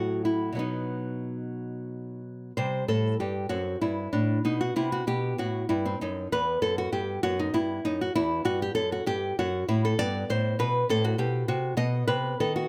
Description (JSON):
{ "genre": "classical, baroque-style dance for nylon-string guitar", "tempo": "65 BPM (dotted quarters)", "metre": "6/8", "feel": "rubato", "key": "unclear", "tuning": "A4 = 439 Hz", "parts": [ { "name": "nylon-string guitar", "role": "solo", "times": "0.0-12.7 s", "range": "E2 to D#5", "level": "-28 LUFS", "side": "equal", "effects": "none" } ], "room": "light reverb", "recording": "close, detailed microphones", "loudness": "-28 LUFS", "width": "mono", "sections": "0.0-2.6 A section; 2.6-12.7 B section", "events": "none", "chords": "0.0 F#dim/A; 0.6 B; 2.6 C5; 3.5 F#dim; 4.4 B5; 6.3 Em; 7.2 B5/F#; 8.2 Em; 10.0 Gadd9; 10.9 Am13; 11.8 B" }